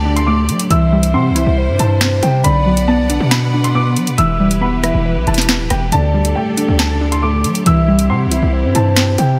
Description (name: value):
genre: hip hop, drill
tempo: 138 BPM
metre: 4/4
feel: half-time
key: unclear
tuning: A4 = 440 Hz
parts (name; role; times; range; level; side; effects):
- dark baby grand piano; melody; 0.0-9.4 s; G5 to E6; -24 LUFS; equal; lush chorus, low-pass filter, delay
- warbly dusty pluck; accompaniment; 0.0-9.4 s; D3 to E4; -20 LUFS; equal; chorus, low-pass filter
- bright studio string section; sustained chords; 0.0-9.4 s; C3 to F#5; -26 LUFS; equal; none
- distorted 808-style bass; bass; 0.0-9.4 s; D1 to F#3; -18 LUFS; equal; distortion
- drill drum kit; drums; 0.2-9.3 s; finger snaps, hi-hat, rim click, snare drum; -21 LUFS; equal; none
- hollow clarinet-like synth lead; second line; 0.7-9.4 s; B4 to F#5; -25 LUFS; equal; chorus, delay
room: moderate lush hall reverb, RT60 2.2 s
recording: dreamy mix soaked in reverb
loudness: -14 LUFS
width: mono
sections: 0.0-9.4 A section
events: none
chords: 0.0 Dsus4; 0.7 C; 2.4 Bm; 4.2 Em; 5.9 Dsus4; 7.7 C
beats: 0.27 | 0.70 1.14 1.57 2.01 | 2.44 2.88 3.31 3.75 | 4.18 4.62 5.05 5.49 | 5.92 6.36 6.79 7.23 | 7.66 8.10 8.53 8.97